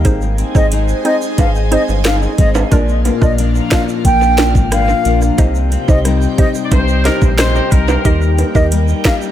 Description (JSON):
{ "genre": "dancehall", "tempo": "90 BPM", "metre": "4/4", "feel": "straight", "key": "unclear", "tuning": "A4 = 440 Hz", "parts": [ { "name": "hollow square pluck", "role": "accompaniment", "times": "0.0-9.2 s", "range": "C4 to Eb5", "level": "-22 LUFS", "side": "right 3 dB", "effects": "chorus, tape echo" }, { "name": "airy breathy pad", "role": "sustained chords", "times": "0.0-9.3 s", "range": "D4 to Ab5", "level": "-24 LUFS", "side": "equal", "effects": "chorus, phaser, sidechain pumping" }, { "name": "nylon-string guitar", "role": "arpeggios", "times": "0.0-9.3 s", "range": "Bb2 to Eb4", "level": "-20 LUFS", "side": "left 8 dB", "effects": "tape echo" }, { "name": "sub bass with octave", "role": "bass", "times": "0.0-8.9 s", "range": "G1 to Eb2", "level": "-15 LUFS", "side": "equal", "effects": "none" }, { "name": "island pop drum kit", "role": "drums", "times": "0.0-9.2 s", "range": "finger snaps, hi-hat, kick drum, rim click, snare drum", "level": "-14 LUFS", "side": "equal", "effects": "tape echo" }, { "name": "egg shaker and timbales", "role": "percussion", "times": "0.1-9.3 s", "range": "none", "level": "-25 LUFS", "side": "right 6 dB", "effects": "tape echo" }, { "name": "mellow silver concert flute", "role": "melody", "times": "0.6-9.2 s", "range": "Eb5 to G5", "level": "-19 LUFS", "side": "equal", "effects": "tape echo" }, { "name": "warm horn section", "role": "second line", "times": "6.6-8.4 s", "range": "Bb4 to D5", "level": "-21 LUFS", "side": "left 2 dB", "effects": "tape echo" } ], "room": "studio reverb", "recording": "echo-heavy mix", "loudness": "-11 LUFS", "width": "side -11 dB against mid", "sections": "0.0-9.3 A section", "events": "none", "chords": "0.1 Ab; 2.7 Bb; 5.4 Cm; 8.1 Eb" }